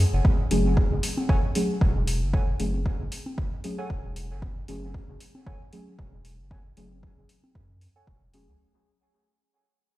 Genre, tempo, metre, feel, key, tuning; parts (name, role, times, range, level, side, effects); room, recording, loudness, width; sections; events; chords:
dub techno; 115 BPM; 4/4; swing 55% on 16ths; F# minor; A4 = 440 Hz
round analog bass; bass; 0.0-8.6 s; E1 to F#2; -26 LUFS; equal; sidechain pumping
electronic kick drum; drums; 0.2-8.2 s; -24 LUFS; equal; overdrive
congas; percussion; 0.2-7.5 s; -37 LUFS; left 1 dB; sidechain pumping on perc, dub echo
deep mellow chord stab; stabs; 0.5-8.5 s; F#3 to G#4; -30 LUFS; equal; chorus, phaser, sidechain pumping, dub echo
electronic hi-hat; drums; 0.5-8.4 s; -35 LUFS; left 1 dB; overdrive
warbly lo-fi synth keys; riff; 1.3-8.1 s; A4 to G#5; -40 LUFS; right 2 dB; chorus, sidechain pumping, low-pass filter, dub echo
light reverb, digital ambience; played on a big sound system in a bare room, stone room reverb; -23 LUFS; side -16 dB against mid
0.0-8.6 A section
fade-out 0.0-8.6; filter sweep on synth stab 0.0-8.6; filter sweep on synth keys 0.0-8.6
0.0 F#madd9